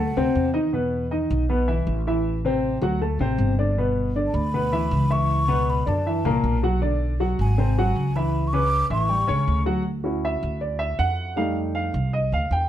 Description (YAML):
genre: Afro-Cuban jazz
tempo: 158 BPM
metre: 4/4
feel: straight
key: unclear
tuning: A4 = 441 Hz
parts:
  - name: breathy mellow concert flute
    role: melody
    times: 0.0-0.5, 4.3-9.6 s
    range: F#5 to D6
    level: -26 LUFS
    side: left 1 dB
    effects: none
  - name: warm baby grand piano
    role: accompaniment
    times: 0.0-12.7 s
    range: A#2 to A5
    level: -24 LUFS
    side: left 1 dB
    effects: none
  - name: upright bass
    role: bass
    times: 0.0-12.7 s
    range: G1 to F#2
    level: -24 LUFS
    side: equal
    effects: none
room: moderate studio reverb, RT60 0.7 s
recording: dark, warm production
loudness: -20 LUFS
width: side -11 dB against mid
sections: 0.0-9.9 A section; 9.9-12.7 B section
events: grand piano solo 9.9-12.7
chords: 0.0 D9; 0.7 E5; 2.3 Am; 3.0 D5; 3.8 G6; 5.3 C#m7; 6.1 F#7#9; 6.8 Bm; 7.6 G#7; 8.3 Aadd9; 9.1 A7; 9.9 Dmaj7; 11.4 F9